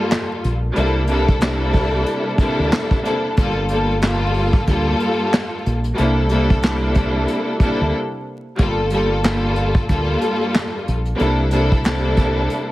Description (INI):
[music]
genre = hip hop, boom-bap hip-hop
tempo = 92 BPM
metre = 4/4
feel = swing 59% on 16ths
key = G dorian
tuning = A4 = 440 Hz
[part]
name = rich studio string section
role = accompaniment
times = 0.0-12.7 s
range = G2 to A4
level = -19 LUFS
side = equal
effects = cassette tape, high-pass filter, low-pass filter
[part]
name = vintage brush drum kit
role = drums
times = 0.1-12.7 s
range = handclaps, hi-hat, kick drum, snare drum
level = -19 LUFS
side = equal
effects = none
[part]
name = fingered electric bass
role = bass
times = 0.4-12.5 s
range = G1 to D2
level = -20 LUFS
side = equal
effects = none
[sound]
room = little or no reverb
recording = heavily compressed radio sound, vinyl crackle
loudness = -16 LUFS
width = side -16 dB against mid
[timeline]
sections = 0.0-12.7 A section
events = break 7.9-8.6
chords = 0.0 Gm7; 0.8 C13; 3.4 Gm7; 6.0 C13; 8.6 Gm7; 11.2 C13